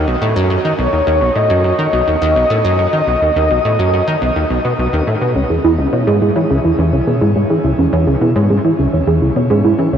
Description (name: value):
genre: ambient, sequencer-driven space music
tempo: 105 BPM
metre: 4/4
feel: straight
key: C# minor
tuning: A4 = 441 Hz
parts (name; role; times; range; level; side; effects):
- plucky analog bass; riff; 0.0-10.0 s; B1 to E3; -14 LUFS; equal; wide subtle chorus, analog delay
- breathy flute-like synth lead; melody; 0.8-4.7 s; C#5 to D#5; -18 LUFS; left 1 dB; analog chorus, analog delay
- soft round pluck; arpeggios; 5.4-10.0 s; C#4 to C#5; -16 LUFS; right 3 dB; chorus, auto-pan, analog delay
room: wet shimmer reverb, RT60 8.0 s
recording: worn, warbling old tape, cassette tape, warbly pitch drift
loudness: -12 LUFS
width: side -8 dB against mid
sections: 0.0-5.4 A section; 5.4-10.0 B section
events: filter sweep on analog synth bass 5.4-10.0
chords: 0.0 B; 5.4 C#m